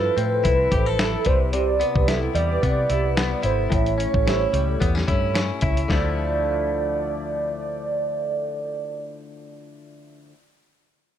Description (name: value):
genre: indie pop, bedroom pop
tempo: 110 BPM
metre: 4/4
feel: swing 55% on 16ths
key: D dorian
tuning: A4 = 440 Hz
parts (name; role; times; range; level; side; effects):
- warm velvety synth lead; melody; 0.0-10.3 s; A4 to E5; -25 LUFS; right 3 dB; wide subtle chorus, slapback echo
- vibraphone with soft mallets; second line; 0.0-7.5 s; E4 to E5; -28 LUFS; right 6 dB; analog chorus, slapback echo
- direct-recorded clean electric guitar; accompaniment; 0.0-10.4 s; A2 to A4; -28 LUFS; left 5 dB; lush chorus, vibrato effect
- warm analog keys; accompaniment; 0.0-1.3 s; F3 to A4; -37 LUFS; right 3 dB; none
- vintage muted picked electric bass; bass; 0.0-10.3 s; G#1 to C3; -25 LUFS; left 1 dB; none
- dusty soul sampler-style drum kit; drums; 0.2-6.0 s; hi-hat, kick drum, snare drum; -24 LUFS; left 1 dB; none
room: light reverb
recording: none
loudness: -20 LUFS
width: side -10 dB against mid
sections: 0.0-5.9 A section; 5.9-10.3 B section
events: none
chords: 0.0 Fmaj7; 1.3 Cmaj7; 3.7 A7; 5.9 Dmadd9